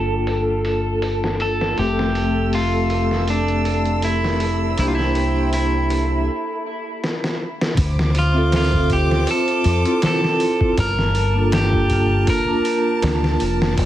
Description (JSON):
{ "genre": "trip hop", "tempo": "80 BPM", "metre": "4/4", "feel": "swing 55% on 16ths", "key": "unclear", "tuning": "A4 = 441 Hz", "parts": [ { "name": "electric guitar at the edge of break-up", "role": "melody", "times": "0.0-13.4 s", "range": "D4 to Bb4", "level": "-23 LUFS", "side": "equal", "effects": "tape echo" }, { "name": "vibraphone with medium hard mallets", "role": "accompaniment", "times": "0.0-13.8 s", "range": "A3 to E5", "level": "-22 LUFS", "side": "equal", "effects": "tremolo, tape echo" }, { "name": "warm chamber violin section", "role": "sustained chords", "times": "0.0-13.9 s", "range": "A4 to E6", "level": "-30 LUFS", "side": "right 1 dB", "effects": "none" }, { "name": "deep dub fingered electric bass", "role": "bass", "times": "0.0-13.9 s", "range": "F1 to F2", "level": "-21 LUFS", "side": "equal", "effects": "none" }, { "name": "flickering grainy texture", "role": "texture", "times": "0.1-6.3 s", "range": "A4", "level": "-33 LUFS", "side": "equal", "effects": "none" }, { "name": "trip hop sampler-style drum kit", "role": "drums", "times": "0.3-13.9 s", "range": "hi-hat, kick drum, snare drum", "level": "-24 LUFS", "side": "equal", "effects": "high-pass filter on hats, studio reverb, high-pass filter on snare, high-pass filter on kick" } ], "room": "little or no reverb", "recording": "heavily compressed radio sound, low-pass filter", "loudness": "-17 LUFS", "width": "side -12 dB against mid", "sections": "0.0-7.8 A section; 7.8-13.9 B section", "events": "break 6.3-7.8; drum fill 7.0-7.8", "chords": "0.0 Gm9; 1.8 Fmaj7; 4.8 C7; 7.8 Dm7; 10.8 Gm9" }